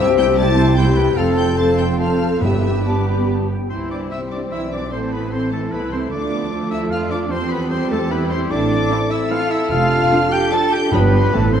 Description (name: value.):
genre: quick classical-period movement for symphony orchestra.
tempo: 149 BPM.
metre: 3/4.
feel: rubato.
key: C major.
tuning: A4 = 439 Hz.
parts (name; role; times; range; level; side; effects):
rich studio violin section; melody; 0.0-11.6 s; A5 to A6; -31 LUFS; left 4 dB; none.
clear oboe; second line; 0.0-11.6 s; A4 to A5; -27 LUFS; right 1 dB; none.
clear studio violin section; second line; 0.0-11.4 s; C4 to A5; -32 LUFS; left 3 dB; none.
small flute group; second line; 0.0-11.6 s; A4 to B5; -26 LUFS; left 2 dB; none.
warm clarinet; second line; 0.0-3.5 s; E4 to G4; -29 LUFS; left 2 dB; none.
rich studio viola section; accompaniment; 0.0-11.4 s; E3 to A4; -24 LUFS; right 1 dB; none.
mellow French horn section; sustained chords; 0.0-11.6 s; G3 to C5; -23 LUFS; left 5 dB; none.
clear studio double bass section; bass; 0.0-11.6 s; F1 to F2; -22 LUFS; right 3 dB; none.
rich studio cello section; bass; 0.0-11.6 s; F2 to A4; -24 LUFS; right 3 dB; none.
timpani; percussion; 2.4-3.0, 10.9-11.3 s; G2; -24 LUFS; equal; none.
dark trumpet section; stabs; 3.7-11.6 s; G4 to C5; -25 LUFS; equal; none.
room: wet concert hall reverb, RT60 1.8 s.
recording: dark, warm production.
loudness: -16 LUFS.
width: side -8 dB against mid.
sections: 0.0-3.7 A section; 3.7-11.6 B section.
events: none.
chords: 0.0 C; 1.2 F; 2.4 G; 3.7 C; 4.9 Am; 6.1 Dm; 7.3 C/E; 8.5 Am; 9.7 Dm/F; 10.9 G7.